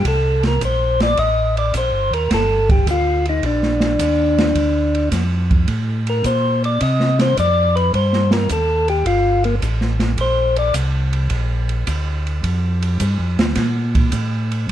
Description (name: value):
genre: soul jazz organ trio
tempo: 107 BPM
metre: 4/4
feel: swing 69% on 8ths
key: G minor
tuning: A4 = 444 Hz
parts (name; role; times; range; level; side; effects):
- percussive tonewheel organ; melody; 0.0-10.7 s; Bb3 to Eb5; -18 LUFS; left 1 dB; slow rotary speaker
- mellow tonewheel organ; bass; 0.0-14.7 s; G1 to C3; -19 LUFS; equal; chorus vibrato, slow rotary speaker
- open jazz drum kit; drums; 0.0-14.7 s; hi-hat, kick drum, ride cymbal, snare drum; -22 LUFS; right 2 dB; none
room: light reverb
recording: dark, warm production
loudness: -15 LUFS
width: side -11 dB against mid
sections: 0.0-14.7 A section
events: tonewheel organ solo 0.0-14.7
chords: 0.1 Cm7; 2.3 Gm7; 6.8 Cm; 9.1 Gm7